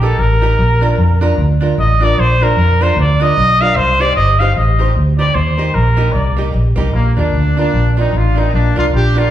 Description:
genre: ska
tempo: 151 BPM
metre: 4/4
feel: swing 59% on 8ths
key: Bb major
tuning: A4 = 440 Hz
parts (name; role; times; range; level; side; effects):
- breathy trumpet; melody; 0.0-6.4 s; A4 to F5; -15 LUFS; equal; none
- archtop guitar, miked and amplified; accompaniment; 0.0-9.3 s; Bb3 to C5; -20 LUFS; right 2 dB; dub echo
- vintage muted fingered electric bass; bass; 0.0-9.3 s; G1 to F2; -13 LUFS; equal; none
- clear horn section; melody; 6.9-9.3 s; F3 to G4; -18 LUFS; left 2 dB; none
room: wet large studio reverb, RT60 1.2 s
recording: band playing live in one room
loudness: -11 LUFS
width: side -12 dB against mid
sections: 0.0-6.9 A section; 6.9-9.3 B section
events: trumpet solo 0.0-6.9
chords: 0.0 Eb; 0.6 Bb; 3.8 Cm; 5.4 Eb; 6.9 Bb

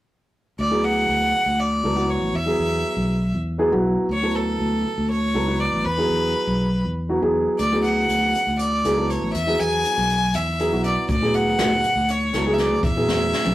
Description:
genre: progressive instrumental, band music in an uneven meter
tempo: 240 BPM (eighths)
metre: 7/8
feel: straight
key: unclear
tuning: A4 = 441 Hz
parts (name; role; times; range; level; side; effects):
- bright violin; melody; 0.6-13.5 s; A4 to G#5; -23 LUFS; equal; none
- fingered electric bass; bass; 0.6-13.5 s; A1 to E2; -24 LUFS; equal; none
- dark grand piano; accompaniment; 0.7-13.5 s; F#3 to B4; -23 LUFS; equal; none
- jazz brush drum kit; drums; 7.6-13.5 s; hi-hat, kick drum, snare drum, toms; -27 LUFS; equal; none
room: wet small room reverb, RT60 0.6 s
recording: rough rehearsal-room recording, warm saturation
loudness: -19 LUFS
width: side -15 dB against mid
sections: 0.6-13.5 A section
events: drum fill 13.1-13.5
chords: 0.6 Dmaj7; 2.3 E; 4.1 Dmaj7; 5.8 E; 7.6 Dmaj7; 9.3 E; 11.1 Dmaj7; 12.8 E

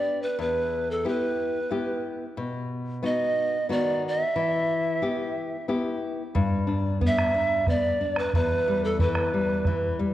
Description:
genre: andean folk, Andean ensemble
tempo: 91 BPM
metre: 3/4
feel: straight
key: E minor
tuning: A4 = 439 Hz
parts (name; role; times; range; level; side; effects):
- breathy pan flute; melody; 0.0-9.9 s; A4 to E5; -26 LUFS; right 2 dB; none
- nylon-string guitar; accompaniment; 0.0-10.1 s; E2 to G4; -28 LUFS; left 2 dB; none
- bombo; percussion; 6.3-9.8 s; none; -28 LUFS; right 1 dB; none
room: wet concert hall reverb, RT60 1.9 s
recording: worn, warbling old tape, cassette tape, warbly pitch drift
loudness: -23 LUFS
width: side -13 dB against mid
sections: 0.0-6.3 A section; 6.3-10.1 A section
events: none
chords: 0.4 Em; 2.4 B; 4.4 Em; 6.3 G; 8.3 Em

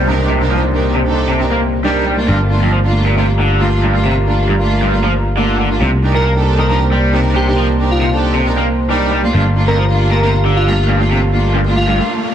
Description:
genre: breakbeat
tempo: 136 BPM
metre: 4/4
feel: straight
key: C dorian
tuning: A4 = 440 Hz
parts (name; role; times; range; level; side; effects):
- dark analog pad; sustained chords; 0.0-12.0 s; Bb3 to C6; -22 LUFS; left 1 dB; chorus
- raw garage guitar; riff; 0.0-12.0 s; F2 to Bb3; -18 LUFS; equal; overdrive, tube saturation, low-pass filter, dub echo
- picked electric bass; bass; 0.0-12.0 s; G1 to C2; -15 LUFS; equal; tube saturation, low-pass filter
- downlifter and riser; sound effects; 0.0-2.3, 11.2-12.3 s; none; -26 LUFS; left 1 dB; none
- rich studio string section; stabs; 0.1-12.1 s; A3 to Bb4; -18 LUFS; right 2 dB; dub echo
- airy dreamy lead; melody; 6.1-12.0 s; F4 to Bb4; -20 LUFS; equal; chorus, telephone sound, dub echo
room: light reverb, small room ambience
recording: dense, heavily limited modern master, vinyl crackle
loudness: -12 LUFS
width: side -9 dB against mid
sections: 0.0-12.3 A section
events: break 12.0-12.3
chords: 0.0 Cm7; 2.3 Gm7; 5.8 Cm7; 9.3 Gm7

